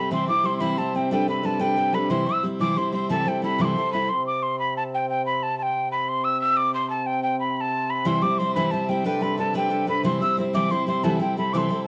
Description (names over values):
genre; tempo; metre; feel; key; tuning
celtic folk, Celtic jig; 121 BPM (dotted quarters); 6/8; straight; C major; A4 = 439 Hz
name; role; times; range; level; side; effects
breathy mellow mid whistle; melody; 0.0-11.9 s; G5 to E6; -26 LUFS; equal; cassette tape
picked steel-string acoustic guitar; accompaniment; 0.0-4.1, 8.0-11.9 s; C3 to C5; -27 LUFS; equal; cassette tape
pedal harmonium; drone; 0.0-11.9 s; C3; -33 LUFS; equal; cassette tape
room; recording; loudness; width
wet studio reverb, RT60 0.6 s; home recording on cassette; -24 LUFS; mono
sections
0.0-4.1 A section; 4.1-11.9 A section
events
none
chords
0.1 C; 1.1 Gadd9; 2.1 C; 3.1 C6; 4.1 N.C.; 8.1 C; 9.0 Gadd9; 10.0 C; 11.0 C6